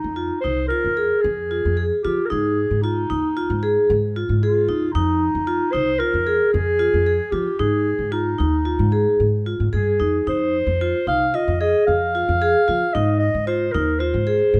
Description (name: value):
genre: contemporary instrumental, chamber music in an uneven meter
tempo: 113 BPM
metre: 5/4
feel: straight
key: F minor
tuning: A4 = 441 Hz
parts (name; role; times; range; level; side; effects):
- mellow clarinet; melody; 0.0-14.6 s; Eb4 to F5; -24 LUFS; equal; none
- upright bass; bass; 0.0-14.6 s; C2 to F3; -26 LUFS; equal; none
- vibraphone with medium hard mallets; arpeggios; 0.2-14.5 s; Eb4 to Ab4; -24 LUFS; equal; none
room: moderate recital hall reverb, RT60 1.6 s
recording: close, detailed microphones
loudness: -20 LUFS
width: mono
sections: 0.0-14.6 A section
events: none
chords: 0.0 Fm; 2.3 Ab5; 5.0 Fm7; 7.6 Ab5; 10.3 Fm7; 13.0 Ab